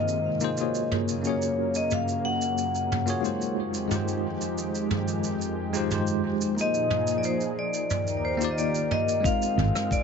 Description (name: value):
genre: sunset chillout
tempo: 90 BPM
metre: 4/4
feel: straight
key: unclear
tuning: A4 = 440 Hz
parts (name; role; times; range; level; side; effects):
- vibraphone with medium hard mallets; melody; 0.0-10.0 s; C5 to Gb5; -28 LUFS; left 3 dB; tape echo
- bell-like tine electric piano; accompaniment; 0.0-10.0 s; Ab3 to D5; -29 LUFS; moving between left 4 dB and right 3 dB; medium stereo tremolo, auto-pan, tape echo
- lush unison pad; sustained chords; 0.0-10.0 s; Eb2 to F5; -32 LUFS; equal; chorus
- soft brush drum kit; drums; 0.1-10.0 s; rim click, shaker, toms; -32 LUFS; right 2 dB; none
- electronic kick drum; drums; 9.2-10.0 s; none; -27 LUFS; equal; none
- fingered electric bass; bass; 9.6-9.7 s; Ab1; -24 LUFS; equal; none
room: moderate spring reverb, RT60 2.6 s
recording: echo-heavy mix, nothing above 7.9 kHz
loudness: -24 LUFS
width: side -6 dB against mid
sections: 0.0-9.2 A section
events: none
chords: 0.0 Ab6; 0.9 Gbmaj7; 3.6 Fm9; 6.6 Bb7sus4; 7.9 Ebmaj7; 9.2 Ab6